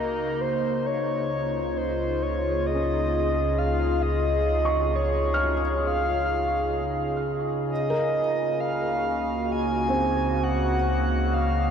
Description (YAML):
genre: ambient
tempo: 66 BPM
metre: 4/4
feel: straight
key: Db major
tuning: A4 = 440 Hz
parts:
  - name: breathy flute-like synth lead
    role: melody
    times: 0.0-11.7 s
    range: Bb4 to Ab5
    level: -27 LUFS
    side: equal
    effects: analog chorus, ping-pong delay
  - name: evolving wavetable pad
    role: sustained chords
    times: 0.0-11.7 s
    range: Db3 to Eb5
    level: -28 LUFS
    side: equal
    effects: chorus, built-in reverb
  - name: felt-muted upright piano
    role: arpeggios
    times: 0.0-11.7 s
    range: C4 to F6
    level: -32 LUFS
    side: right 1 dB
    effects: ping-pong delay
  - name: deep rumbling drone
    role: bass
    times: 0.0-11.7 s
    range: Db2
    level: -29 LUFS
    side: left 1 dB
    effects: built-in reverb
  - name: overtone-sweeping drone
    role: drone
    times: 1.6-11.7 s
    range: Db3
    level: -34 LUFS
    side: right 2 dB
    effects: chorus, built-in reverb
room: wet cathedral reverb, RT60 6.4 s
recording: dark, warm production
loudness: -22 LUFS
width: side -7 dB against mid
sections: 0.4-11.7 A section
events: none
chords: 0.4 Dbadd9; 7.7 Ebmadd9/Db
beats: | 0.43 1.34 2.25 3.16 | 4.07 4.98 5.89 6.80 | 7.71 8.61 9.52 10.43 | 11.34